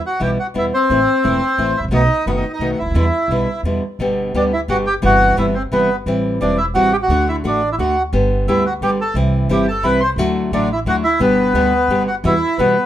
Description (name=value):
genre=tango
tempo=174 BPM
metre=3/4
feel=rubato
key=E minor, G major from 4.0 s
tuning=A4 = 443 Hz
part: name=bandoneon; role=melody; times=0.0-12.9 s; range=B3 to C6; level=-17 LUFS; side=equal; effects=none
part: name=nylon-string guitar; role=accompaniment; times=0.2-12.8 s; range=B2 to G4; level=-18 LUFS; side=left 1 dB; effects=none
part: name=upright bass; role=bass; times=0.2-12.7 s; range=E1 to E2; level=-21 LUFS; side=right 1 dB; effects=none
room=light reverb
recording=minimal, uncompressed stereo recording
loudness=-14 LUFS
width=side -12 dB against mid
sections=0.0-4.0 A section; 4.0-12.2 B section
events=none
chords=0.0 Em; 0.9 Am; 1.9 B7; 3.0 Em7; 4.0 G; 5.0 Cmaj7/G; 6.1 Am7; 7.1 D; 8.1 Gadd9; 9.2 C; 10.2 Dadd9; 11.2 G; 12.2 Emadd9